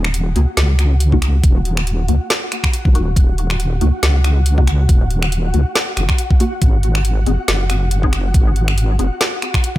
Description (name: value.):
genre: deep dubstep.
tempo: 139 BPM.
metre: 4/4.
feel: swing 56% on 16ths, half-time.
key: Eb minor.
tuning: A4 = 440 Hz.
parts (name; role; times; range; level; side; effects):
wobble bass; bass; 0.0-9.8 s; Eb1 to Db2; -15 LUFS; equal; chorus.
garage drum kit; drums; 0.0-9.7 s; finger snaps, hi-hat, snare drum; -20 LUFS; equal; none.
flickering grainy texture; texture; 0.1-9.8 s; Gb4 to Gb5; -28 LUFS; left 1 dB; built-in reverb.
filtered dub chord stab; stabs; 0.4-9.2 s; Bb3 to Ab4; -25 LUFS; left 2 dB; phaser, ensemble chorus, dub echo.
electronic kick drum; drums; 1.1-9.8 s; none; -13 LUFS; equal; none.
room: little or no reverb.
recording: none.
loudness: -13 LUFS.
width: side -16 dB against mid.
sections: 0.0-9.8 A section.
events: none.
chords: 0.0 Ebm; 6.6 Ab.